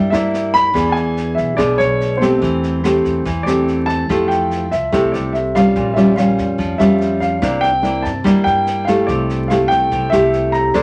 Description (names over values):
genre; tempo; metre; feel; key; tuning
bossa nova; 144 BPM; 4/4; straight; unclear; A4 = 439 Hz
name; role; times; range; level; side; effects
dark grand piano; melody; 0.0-10.8 s; C5 to B5; -21 LUFS; equal; none
nylon-string guitar; accompaniment; 0.0-10.8 s; Bb2 to C5; -18 LUFS; equal; none
upright bass; bass; 0.0-10.8 s; Bb1 to G2; -28 LUFS; equal; none
jazz brush drum kit; drums; 0.1-10.8 s; kick drum, rim click, snare drum; -32 LUFS; equal; none
room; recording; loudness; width
wet studio reverb, RT60 0.6 s; vinyl crackle; -16 LUFS; mono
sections
0.0-10.8 A section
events
none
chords
0.0 C9 (rootless); 0.8 E7; 2.4 Am7/E; 4.1 Fmaj9; 5.7 Bbm6; 7.4 C9; 9.1 C69